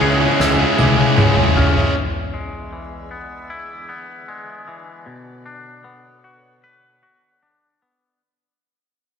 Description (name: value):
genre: post-rock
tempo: 77 BPM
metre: 4/4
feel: straight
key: unclear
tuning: A4 = 444 Hz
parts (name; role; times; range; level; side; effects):
- dark chamber string section; sustained chords; 0.0-8.2 s; D3 to F#6; -34 LUFS; left 3 dB; none
- twangy electric guitar; arpeggios; 0.0-8.2 s; E2 to B4; -28 LUFS; left 3 dB; slapback echo
- vibraphone with hard mallets; arpeggios; 0.0-1.9 s; C#5 to D6; -28 LUFS; right 1 dB; slapback echo
- overdriven electric guitar; riff; 0.0-1.9 s; C#3 to G#4; -20 LUFS; right 9 dB; none
- thick fuzz guitar; riff; 0.0-1.9 s; C#3 to G#4; -20 LUFS; left 8 dB; distortion
- fuzz picked electric bass; bass; 0.0-1.8 s; C#2; -21 LUFS; equal; overdrive
- soft-mallet drum kit; drums; 0.0-1.9 s; crash cymbal, snare drum, toms; -19 LUFS; left 2 dB; none
room: moderate lush hall reverb, RT60 2.7 s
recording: big arena sound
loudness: -13 LUFS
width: side -7 dB against mid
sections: 0.0-2.0 A section; 2.0-8.2 B section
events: drum fill 0.4-2.0; fade-out 2.0-8.2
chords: 0.0 C#m; 2.0 E7; 5.1 Bm9